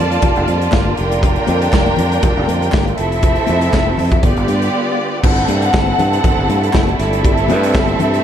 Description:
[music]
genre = disco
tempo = 120 BPM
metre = 4/4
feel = straight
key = unclear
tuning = A4 = 440 Hz
[part]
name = clear studio string section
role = second line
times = 0.0-8.2 s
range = B3 to A5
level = -18 LUFS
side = equal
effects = none
[part]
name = clear symphonic string section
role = sustained chords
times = 0.0-8.2 s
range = C3 to F4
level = -22 LUFS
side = right 2 dB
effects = none
[part]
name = fingered electric bass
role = bass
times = 0.0-8.2 s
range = F1 to G2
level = -18 LUFS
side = equal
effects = none
[part]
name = modern studio drum kit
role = drums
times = 0.1-8.2 s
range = crash cymbal, hi-hat, kick drum, snare drum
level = -17 LUFS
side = equal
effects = gated reverb
[part]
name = congas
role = percussion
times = 0.2-8.1 s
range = none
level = -25 LUFS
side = left 8 dB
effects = none
[part]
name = group handclap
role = percussion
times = 0.7-7.9 s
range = none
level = -33 LUFS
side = right 2 dB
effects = none
[sound]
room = light reverb, studio reverb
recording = none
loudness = -12 LUFS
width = side -9 dB against mid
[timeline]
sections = 0.0-5.2 A section; 5.2-8.2 A section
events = break 4.7-5.2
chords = 0.0 Bb6/F; 3.0 Fmaj7; 4.2 G7; 5.2 C6/G

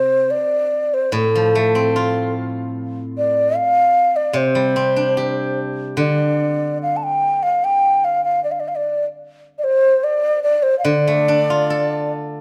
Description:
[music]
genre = chinese traditional, Chinese chamber ensemble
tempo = 74 BPM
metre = 2/4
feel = rubato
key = D yu mode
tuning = A4 = 444 Hz
[part]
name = breathy reedy low xiao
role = melody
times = 0.0-12.1 s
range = A4 to A5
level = -19 LUFS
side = equal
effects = none
[part]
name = steel-string zither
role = accompaniment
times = 0.0-12.4 s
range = A2 to A4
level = -24 LUFS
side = equal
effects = none
[sound]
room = moderate recital hall reverb, RT60 1.5 s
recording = none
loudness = -18 LUFS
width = mono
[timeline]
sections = 0.0-12.4 A section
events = none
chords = none

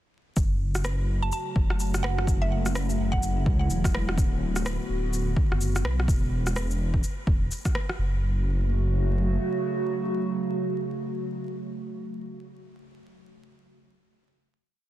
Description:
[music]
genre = future garage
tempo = 126 BPM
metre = 4/4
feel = swing 60% on 16ths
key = F# minor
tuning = A4 = 440 Hz
[part]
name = warbly tape-like pad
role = sustained chords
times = 1.0-12.0 s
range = C#3 to F#4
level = -31 LUFS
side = right 1 dB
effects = chorus, built-in reverb, phaser, sidechain pumping
[part]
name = swelling detuned saw bass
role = bass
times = 0.4-9.4 s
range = D1 to C#2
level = -26 LUFS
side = equal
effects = none
[part]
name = electronic kick drum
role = drums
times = 0.4-7.7 s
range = none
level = -25 LUFS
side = equal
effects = overdrive, small room ambience
[part]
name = electronic shaker and rim click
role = drums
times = 0.4-8.0 s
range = none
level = -34 LUFS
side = equal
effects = overdrive, small room ambience
[part]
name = mallet-like synth pluck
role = melody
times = 1.2-3.6 s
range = E5 to A5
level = -35 LUFS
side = right 3 dB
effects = chorus, phaser, vintage 12-bit sampler grit, digital delay
[sound]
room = little or no reverb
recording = dense, heavily limited modern master, vinyl crackle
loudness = -24 LUFS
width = side -13 dB against mid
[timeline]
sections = 0.4-8.0 groove; 8.0-11.8 final chord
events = none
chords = 0.4 F#m; 4.2 D6; 6.1 N.C.; 8.0 F#m

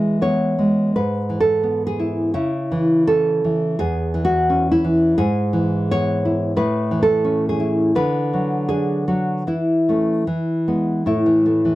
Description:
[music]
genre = romantic piece for solo classical guitar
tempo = 74-89 BPM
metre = 2/4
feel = rubato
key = A major from 5.2 s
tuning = A4 = 440 Hz
[part]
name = nylon-string guitar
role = solo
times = 0.0-11.8 s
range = E2 to C#5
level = -17 LUFS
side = equal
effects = none
[sound]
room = light reverb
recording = dry, close 1970s-style studio recording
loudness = -17 LUFS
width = side -16 dB against mid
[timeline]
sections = 0.0-11.1 A section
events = none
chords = 0.0 E; 1.0 E/G#; 2.4 C#m; 3.8 C#m/E; 5.2 E/G#; 6.6 A; 8.0 Bm/D; 9.5 A/E; 10.3 E; 11.1 A5

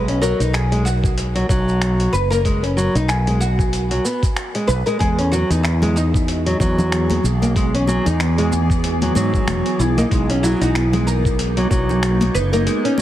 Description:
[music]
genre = organic downtempo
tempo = 94 BPM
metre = 4/4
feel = swing 57% on 16ths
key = unclear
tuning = A4 = 441 Hz
[part]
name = oud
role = melody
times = 0.0-13.0 s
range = D#4 to B4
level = -24 LUFS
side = equal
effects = tape echo
[part]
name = nylon-string guitar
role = arpeggios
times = 0.0-13.0 s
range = F#3 to D#4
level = -22 LUFS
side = equal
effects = tape echo
[part]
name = fretless electric bass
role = bass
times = 0.0-12.7 s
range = E1 to G#2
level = -19 LUFS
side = equal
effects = sidechain pumping
[part]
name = dusty soul sampler-style drum kit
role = drums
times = 0.1-13.0 s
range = finger snaps, hi-hat, shaker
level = -28 LUFS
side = equal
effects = none
[part]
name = electronic kick drum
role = drums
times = 1.0-11.9 s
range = none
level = -20 LUFS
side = equal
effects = none
[part]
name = granular cloud pad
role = sustained chords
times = 6.1-13.0 s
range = E3 to A#4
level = -25 LUFS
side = right 2 dB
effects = built-in reverb, sidechain pumping
[part]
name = congas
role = percussion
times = 5.8-13.0 s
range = none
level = -25 LUFS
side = left 2 dB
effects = none
[sound]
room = little or no reverb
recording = heavily compressed radio sound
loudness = -16 LUFS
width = side -13 dB against mid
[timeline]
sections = 0.0-13.0 A section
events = none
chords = 0.0 Bmaj7(no3); 5.0 E; 10.1 Bmaj7

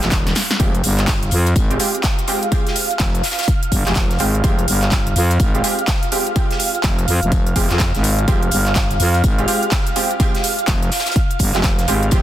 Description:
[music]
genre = bass house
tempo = 125 BPM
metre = 4/4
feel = swing 62% on 16ths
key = F minor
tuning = A4 = 440 Hz
[part]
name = growling FM bass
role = bass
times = 0.0-12.2 s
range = Eb1 to F2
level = -18 LUFS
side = equal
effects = tube saturation, sidechain pumping
[part]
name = big-room dance drum kit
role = drums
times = 0.0-12.2 s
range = handclaps, hi-hat, snare drum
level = -22 LUFS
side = right 1 dB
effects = none
[part]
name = huge arena drum kit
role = drums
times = 0.0-12.2 s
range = hi-hat, snare drum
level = -29 LUFS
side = left 3 dB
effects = high-pass filter on hats, high-pass filter on snare, high-pass filter on room
[part]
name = granular cloud pad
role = texture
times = 0.4-12.2 s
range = F5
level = -24 LUFS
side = right 2 dB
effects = built-in reverb, sidechain pumping
[part]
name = electronic kick drum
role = drums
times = 0.1-12.2 s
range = none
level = -18 LUFS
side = equal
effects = none
[part]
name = orchestra-hit-like synth stab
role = stabs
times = 0.6-12.2 s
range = Ab3 to G4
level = -24 LUFS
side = right 2 dB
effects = built-in reverb, sidechain pumping, digital delay
[sound]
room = light reverb, digital ambience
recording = dense, heavily limited modern master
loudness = -15 LUFS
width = side -12 dB against mid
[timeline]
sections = 0.0-12.2 A section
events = drum fill 0.2-0.6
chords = 0.0 Fmadd9

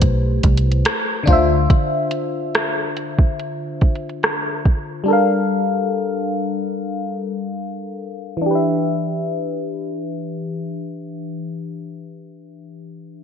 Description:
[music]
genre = contemporary R&B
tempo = 71 BPM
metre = 4/4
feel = straight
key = E phrygian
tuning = A4 = 441 Hz
[part]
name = FM electric piano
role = accompaniment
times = 0.0-13.2 s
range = D3 to F5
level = -21 LUFS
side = left 2 dB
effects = chorus, phaser
[part]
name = vintage muted fingered electric bass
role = bass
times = 0.0-1.7 s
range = B1 to D2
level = -17 LUFS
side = right 1 dB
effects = none
[part]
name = smooth R&B drum kit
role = drums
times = 0.0-4.9 s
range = hi-hat, kick drum, rim click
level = -17 LUFS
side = right 1 dB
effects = gated reverb
[sound]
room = moderate lush hall reverb, RT60 2.8 s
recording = bright 1980s-style digital production, low-pass filter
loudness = -18 LUFS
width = side -7 dB against mid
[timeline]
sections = 0.0-8.5 A section; 8.5-11.8 B section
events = filter sweep 0.0-8.5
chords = 0.0 Am7; 1.3 Dm7; 5.1 Gm7; 8.5 Em7

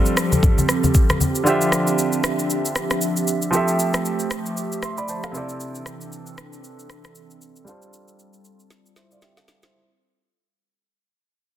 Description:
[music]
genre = amapiano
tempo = 116 BPM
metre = 4/4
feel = swing 58% on 16ths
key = unclear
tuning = A4 = 440 Hz
[part]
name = bright concert grand piano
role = accompaniment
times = 0.0-9.9 s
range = C3 to C6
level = -24 LUFS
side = right 1 dB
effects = low-pass filter
[part]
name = hollow soft pad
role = sustained chords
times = 0.0-9.7 s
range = E3 to E5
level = -25 LUFS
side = right 1 dB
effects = chorus, low-pass filter
[part]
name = afro-pop drum kit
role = drums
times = 0.1-9.7 s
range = kick drum, rim click, shaker, snare drum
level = -21 LUFS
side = equal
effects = soft clipping on snare
[part]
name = congas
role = percussion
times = 0.3-1.3 s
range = none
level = -22 LUFS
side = left 2 dB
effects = none
[sound]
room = light reverb, small room ambience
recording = dense, heavily limited modern master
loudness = -18 LUFS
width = side -12 dB against mid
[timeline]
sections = 0.0-9.7 A section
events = fade-out 0.0-9.7; filter sweep 0.0-9.7; drum fill 8.7-9.7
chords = 0.0 G9sus4; 1.5 Dm11; 3.5 Fmaj9; 5.3 C69; 7.7 G9sus4

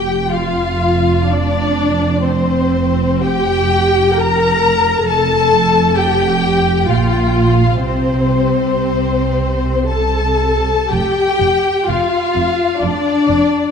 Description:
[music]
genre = classical, slow romantic movement for string orchestra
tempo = 54-68 BPM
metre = 3/4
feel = rubato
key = F major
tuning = A4 = 440 Hz
[part]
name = rich chamber violin section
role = melody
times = 0.0-13.7 s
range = C5 to Bb5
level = -18 LUFS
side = left 4 dB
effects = none
[part]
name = rich symphonic violin section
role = second line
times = 0.0-13.7 s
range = C4 to Bb4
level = -20 LUFS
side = left 3 dB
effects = none
[part]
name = warm chamber viola section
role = accompaniment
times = 0.0-13.7 s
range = C4 to Bb4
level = -18 LUFS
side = left 2 dB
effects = none
[part]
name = dark chamber cello section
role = bass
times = 0.0-13.4 s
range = F2 to C3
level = -20 LUFS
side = right 4 dB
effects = none
[part]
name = dark chamber double bass section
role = bass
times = 0.0-13.4 s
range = F1 to C2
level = -20 LUFS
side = right 4 dB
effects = none
[sound]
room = moderate scoring stage reverb, RT60 2.2 s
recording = dark, warm production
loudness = -12 LUFS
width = side -6 dB against mid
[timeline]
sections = 0.0-13.7 A section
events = none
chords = 0.0 F; 6.9 Bb5; 7.8 N.C.; 9.9 Am/C; 10.9 Fsus2

